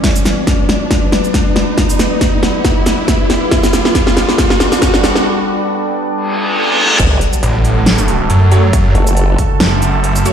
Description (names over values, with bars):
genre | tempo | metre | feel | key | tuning
heavy wobble dubstep | 138 BPM | 4/4 | swing 55% on 16ths, half-time | F# phrygian | A4 = 444 Hz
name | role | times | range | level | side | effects
evolving wavetable pad | sustained chords | 0.0-10.3 s | C#3 to D5 | -18 LUFS | equal | phaser, built-in reverb, sidechain pumping
big-room dance drum kit | drums | 0.0-10.3 s | crash cymbal, hi-hat, shaker, snare drum | -15 LUFS | equal | studio reverb
electronic kick drum | drums | 0.0-9.5 s | none | -16 LUFS | equal | studio reverb
riser, reverse cymbal and sub drop | sound effects | 0.0-8.7 s | none | -18 LUFS | right 1 dB | none
formant-sweep wobble bass | bass | 7.0-9.4 s | F#1 | -13 LUFS | equal | chorus, overdrive
snarling distorted saw bass | bass | 7.4-10.2 s | F#1 to F#2 | -12 LUFS | equal | distortion, overdrive
orchestra-hit-like synth stab | stabs | 8.5-10.3 s | A3 to C#5 | -20 LUFS | right 2 dB | built-in reverb, phaser, cassette tape, digital delay
room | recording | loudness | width
moderate lush hall reverb, RT60 1.5 s | played on a big sound system in a bare room, large studio reverb | -10 LUFS | side -8 dB against mid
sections
0.0-7.0 A section; 7.0-10.3 B section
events
build-up 0.0-7.0; drum fill 0.0-5.3; riser 0.0-5.3; filter sweep on ambient pad 0.0-7.0; break 5.3-7.0; reverse cymbal 6.3-7.0; drop 7.0-10.3; impact 7.0-8.7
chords
0.0 Bm/F#; 3.5 Gadd9; 7.0 F#m